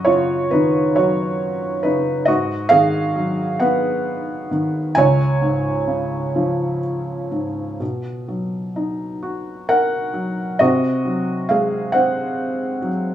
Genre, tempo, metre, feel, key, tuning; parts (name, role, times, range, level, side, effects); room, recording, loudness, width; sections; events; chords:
classical, lyrical solo piano; 43 BPM (dotted quarters); 6/8; uneven beats, rubato; A4 = 439 Hz
felt-muted upright piano; solo; 0.0-13.1 s; C#2 to G#5; -17 LUFS; right 1 dB
light reverb; studio reverb; -17 LUFS; side -11 dB against mid
0.0-13.1 A section
0.0 Badd9/F#; 2.3 G#m7; 5.0 C#; 7.8 B; 10.6 G#7/B#